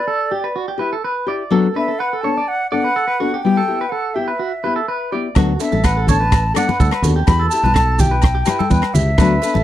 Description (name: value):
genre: highlife guitar band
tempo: 125 BPM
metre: 4/4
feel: straight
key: unclear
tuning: A4 = 439 Hz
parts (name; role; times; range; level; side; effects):
- mellow silver concert flute; melody; 0.0-9.6 s; D5 to B5; -21 LUFS; equal; slapback echo
- clean electric guitar; arpeggios; 0.0-9.6 s; F#4 to D5; -22 LUFS; right 3 dB; harmonic tremolo, slapback echo
- nylon-string guitar; accompaniment; 0.3-9.6 s; F#3 to A4; -20 LUFS; left 5 dB; none
- fingered electric bass; bass; 5.4-9.6 s; A1 to E2; -18 LUFS; right 1 dB; none
- compact cocktail drum kit; drums; 5.4-9.5 s; hi-hat, kick drum, rim click; -15 LUFS; right 1 dB; none
- agogo bells; percussion; 5.4-9.3 s; none; -29 LUFS; left 16 dB; none
- maracas; percussion; 5.4-9.6 s; none; -32 LUFS; right 11 dB; none
- congas; percussion; 5.7-9.6 s; none; -21 LUFS; left 2 dB; none
room: little or no reverb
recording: dry, close 1970s-style studio recording, faint mains hum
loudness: -15 LUFS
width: side -12 dB against mid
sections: 0.0-9.6 A section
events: none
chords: 0.0 Em; 1.5 D6; 3.4 Em; 5.4 D6; 7.3 Em